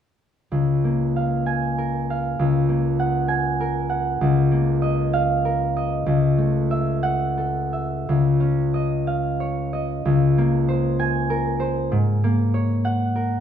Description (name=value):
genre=classical, solo harp piece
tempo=80-101 BPM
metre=3/4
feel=rubato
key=Db major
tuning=A4 = 440 Hz
part: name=concert harp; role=solo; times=0.5-13.4 s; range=Db2 to Ab5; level=-19 LUFS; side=equal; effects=none
room=wet recital hall reverb, RT60 1.4 s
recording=none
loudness=-19 LUFS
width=side -9 dB against mid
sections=0.5-8.1 A section; 8.1-13.4 B section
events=none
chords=0.5 Db6; 2.4 Gbadd9/Db; 4.2 Db69; 6.1 Gbm9/Db; 8.1 Dbadd9; 10.0 Bbm9/Db; 11.9 Ab11